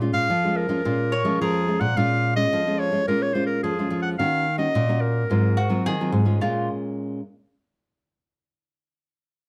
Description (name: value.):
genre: samba.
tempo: 108 BPM.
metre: 4/4.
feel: straight.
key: Bb minor.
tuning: A4 = 440 Hz.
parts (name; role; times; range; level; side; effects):
nylon-string guitar; accompaniment; 0.0-7.2 s; F2 to Gb4; -28 LUFS; equal; none.
nylon-string guitar; bass; 0.0-6.7 s; Ab2 to Bb3; -27 LUFS; equal; none.
bright clarinet; melody; 0.1-5.9 s; Ab4 to Gb5; -27 LUFS; equal; none.
mandolin; second line; 1.1-1.9, 5.6-6.7 s; F4 to Db5; -30 LUFS; equal; none.
room: moderate studio reverb, RT60 0.6 s.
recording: none.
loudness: -23 LUFS.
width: mono.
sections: 0.0-2.0 A section; 2.0-6.4 B section; 6.4-8.6 C section.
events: none.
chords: 0.0 Bbm7; 4.2 Ebm7; 5.3 Ab13; 6.4 Bbm7.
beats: 0.30 0.86 1.41 | 1.97 2.53 3.08 3.64 | 4.19 4.75 5.30 5.86 | 6.42 6.97.